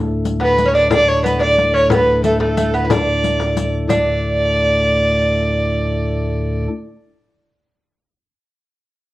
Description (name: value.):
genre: medieval dance.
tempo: 120 BPM (dotted quarters).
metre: 6/8.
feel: straight.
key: unclear.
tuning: A4 = 440 Hz.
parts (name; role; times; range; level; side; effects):
chamber organ, sparkling flutes; drone; 0.0-6.7 s; D2 to A2; -20 LUFS; left 1 dB; cassette tape.
frame drum; percussion; 0.1-4.0 s; none; -21 LUFS; left 4 dB; none.
riq; percussion; 0.3-4.1 s; none; -26 LUFS; left 6 dB; none.
dark fiddle; melody; 0.4-6.6 s; A4 to D5; -17 LUFS; right 1 dB; none.
lute; second line; 0.4-7.3 s; A3 to E4; -20 LUFS; right 2 dB; cassette tape.
room: wet studio reverb, RT60 0.7 s.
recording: home recording on cassette.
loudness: -14 LUFS.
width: side -16 dB against mid.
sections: 0.0-3.9 A section; 3.9-5.9 B section.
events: none.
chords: none.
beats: 0.41 | 0.91 1.41 | 1.91 2.40 | 2.90 3.40 | 3.90 4.39 | 4.89 5.39.